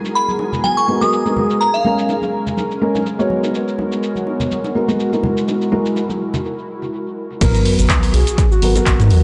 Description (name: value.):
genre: deep house.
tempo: 124 BPM.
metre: 4/4.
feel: swing 55% on 16ths.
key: G# minor.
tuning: A4 = 440 Hz.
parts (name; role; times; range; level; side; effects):
airy breathy pad; sustained chords; 0.0-9.2 s; G#3 to A#4; -28 LUFS; equal; chorus, sidechain pumping.
bongos and congas; percussion; 0.0-6.4 s; none; -29 LUFS; equal; tape echo.
deep dark ambient pad; texture; 0.0-9.2 s; B3 to A#5; -31 LUFS; equal; chorus, built-in reverb, sidechain pumping.
soft string machine; texture; 0.0-6.4 s; G#4 to G#5; -39 LUFS; equal; phaser, ensemble chorus.
punchy analog drum machine; drums; 0.1-9.2 s; crash cymbal, handclaps, hi-hat, ride cymbal, shaker; -27 LUFS; equal; low-pass filter on perc, low-pass filter on hats, low-pass filter on cymbals, low-pass filter on snare, low-pass filter on room, tape echo.
glassy synth bell; melody; 0.2-2.4 s; E#5 to D#6; -21 LUFS; equal; chorus, analog delay.
felt-muted upright piano; stabs; 0.9-9.2 s; F#3 to C#5; -22 LUFS; equal; sidechain pumping, low-pass filter, analog delay.
warm velvety synth lead; melody; 7.4-9.2 s; F#4 to A#4; -26 LUFS; equal; chorus, vintage 12-bit sampler grit, analog delay.
sub bass with octave; bass; 7.4-9.2 s; G#1 to G#2; -16 LUFS; equal; sidechain pumping.
damped 70s drum kit; drums; 7.4-9.2 s; hi-hat, snare drum; -38 LUFS; equal; none.
electronic kick drum; drums; 7.4-9.0 s; none; -19 LUFS; equal; none.
sub drop; sound effects; 7.4-9.2 s; none; -25 LUFS; equal; none.
room: moderate plate reverb, RT60 2.2 s.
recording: echo-heavy mix, nothing above 10.6 kHz.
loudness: -17 LUFS.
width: mono.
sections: 0.0-7.4 A section; 7.4-9.2 B section.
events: break 6.4-7.4; drop 7.4-9.2; impact 7.4-9.2.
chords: 0.0 G#m9; 1.6 A#m7; 3.3 G#m9; 5.2 F#9; 7.4 G#m9.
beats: 0.15 0.64 1.12 | 1.61 2.09 2.57 3.06 | 3.54 4.03 4.51 4.99 | 5.48 5.96 6.45 6.93 | 7.41 7.90 8.38 8.86.